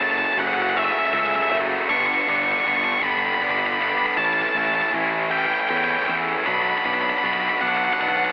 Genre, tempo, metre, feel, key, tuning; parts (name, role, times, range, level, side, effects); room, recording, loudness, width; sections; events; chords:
post-rock; 52 BPM (dotted quarters); 6/8; straight; G lydian; A4 = 439 Hz
octave-fuzz lead guitar; melody; 0.0-8.3 s; E5 to C#6; -24 LUFS; equal; distortion, tape echo
distorted electric guitar; riff; 0.0-8.3 s; F#2 to E4; -24 LUFS; equal; overdrive
fuzz fingered electric bass; bass; 0.0-8.3 s; F#1 to E2; -32 LUFS; equal; overdrive
moderate concert hall reverb, RT60 2.0 s; telephone sound; -21 LUFS; mono
0.0-8.3 A section
0.0 F#m7; 1.9 G; 4.2 A; 6.5 Bm